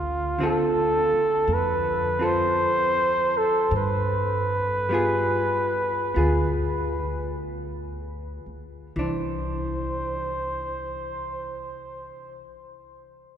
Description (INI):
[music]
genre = jazz ballad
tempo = 39-56 BPM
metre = 4/4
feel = swing 66% on 8ths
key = C major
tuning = A4 = 440 Hz
[part]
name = mellow flugelhorn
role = melody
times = 0.0-12.5 s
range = F4 to C5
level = -25 LUFS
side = right 1 dB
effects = none
[part]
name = upright bass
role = bass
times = 0.0-12.4 s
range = C2 to G2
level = -30 LUFS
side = equal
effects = none
[part]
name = vintage hollow-body jazz guitar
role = accompaniment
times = 0.4-12.5 s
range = D3 to A4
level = -29 LUFS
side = left 1 dB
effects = none
[sound]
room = wet cathedral reverb, RT60 5.3 s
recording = recorded in a church or concert hall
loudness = -22 LUFS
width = side -9 dB against mid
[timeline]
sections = 0.0-8.9 A section; 8.9-13.4 B section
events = slowing down 0.0-8.9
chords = 0.0 Dm7; 3.7 G7b9; 8.9 Cadd9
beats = 0.39 1.47 2.56 | 3.70 4.89 6.14 7.48 | 8.95 10.46 11.96